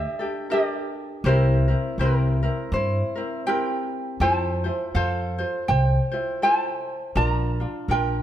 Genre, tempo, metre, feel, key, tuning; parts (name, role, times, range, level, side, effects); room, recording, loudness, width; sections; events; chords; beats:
Hawaiian; 81 BPM; 4/4; swing 59% on 8ths; F major; A4 = 444 Hz
ukulele; melody; 0.0-8.2 s; E4 to Bb5; -26 LUFS; right 2 dB
ukulele; accompaniment; 0.0-8.2 s; C4 to C5; -28 LUFS; left 2 dB
upright bass; bass; 0.0-8.2 s; Bb1 to G2; -23 LUFS; equal
light reverb; close, detailed microphones; -21 LUFS; side -11 dB against mid
0.0-8.2 A section
0.0 Gmadd9; 1.2 C7; 4.2 Fmaj7; 7.2 Bb
0.50 | 1.24 1.98 2.72 3.46 | 4.20 4.94 5.68 6.42 | 7.16 7.89